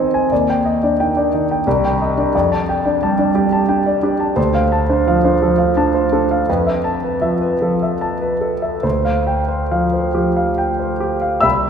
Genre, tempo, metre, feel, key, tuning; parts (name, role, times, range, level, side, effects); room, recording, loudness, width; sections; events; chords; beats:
classical, impressionist solo piano; 68-90 BPM; 3/4; rubato; A4 = 441 Hz
warm concert grand piano; solo; 0.0-11.7 s; C2 to E6; -14 LUFS; equal
wet concert hall reverb, RT60 2.2 s; recorded in a church or concert hall; -14 LUFS; side -7 dB against mid
0.0-11.4 A section
0.3 Ebmaj7; 1.7 Cmadd9; 2.3 F69; 4.4 Dm7; 6.5 Fmaj7#11; 8.8 Dm7
| 0.31 0.99 1.66 | 2.34 3.01 3.69 | 4.37 5.06 5.76 | 6.48 7.22 8.01 | 8.84 9.72 10.58 | 11.44